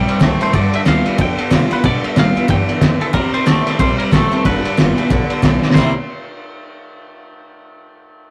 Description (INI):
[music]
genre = rockabilly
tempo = 184 BPM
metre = 4/4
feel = swing 61% on 8ths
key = C major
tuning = A4 = 440 Hz
[part]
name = twangy electric guitar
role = melody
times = 0.0-5.9 s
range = A4 to G5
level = -26 LUFS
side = equal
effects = spring reverb
[part]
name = picked steel-string acoustic guitar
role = accompaniment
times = 0.0-5.9 s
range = G2 to F4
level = -23 LUFS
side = equal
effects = none
[part]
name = twangy electric guitar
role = riff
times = 0.0-5.9 s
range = G2 to E4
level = -24 LUFS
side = equal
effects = none
[part]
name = upright bass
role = bass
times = 0.0-5.9 s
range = F1 to C3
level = -25 LUFS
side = equal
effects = none
[part]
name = cloth-damped thuddy drum kit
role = drums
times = 0.1-5.8 s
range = crash cymbal, kick drum, ride cymbal, snare drum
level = -18 LUFS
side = equal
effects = none
[sound]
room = moderate booth ambience, RT60 0.2 s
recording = rough rehearsal-room recording, tube saturation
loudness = -15 LUFS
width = mono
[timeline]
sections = 0.0-5.8 A section; 5.8-7.1 B section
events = drum fill 5.6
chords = 0.0 C7; 0.5 G7; 3.1 C7; 4.5 G7; 5.8 C7